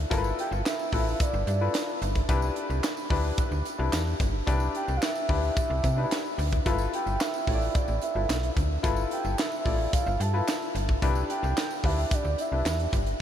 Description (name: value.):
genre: early-eighties boogie funk.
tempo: 110 BPM.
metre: 4/4.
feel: straight.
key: C major.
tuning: A4 = 440 Hz.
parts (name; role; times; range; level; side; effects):
slap-like FM bass; bass; 0.0-13.1 s; G1 to C3; -28 LUFS; equal; none.
warm concert grand piano; accompaniment; 0.1-12.9 s; D4 to D5; -32 LUFS; left 4 dB; none.
tight funk drum kit; drums; 0.1-13.2 s; handclaps, hi-hat, kick drum, snare drum; -29 LUFS; equal; none.
tambourine; percussion; 0.1-13.1 s; none; -46 LUFS; right 7 dB; none.
soft octave-layered synth lead; melody; 0.4-12.9 s; D5 to A5; -33 LUFS; right 2 dB; chorus, tremolo, diffuse ambient delay.
room: moderate huge ambient reverb, RT60 7.1 s.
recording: dreamy mix soaked in reverb.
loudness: -25 LUFS.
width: side -10 dB against mid.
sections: 0.0-13.2 A section.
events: none.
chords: 0.0 G13; 2.3 Cmaj7; 6.7 G13; 11.0 Cmaj7.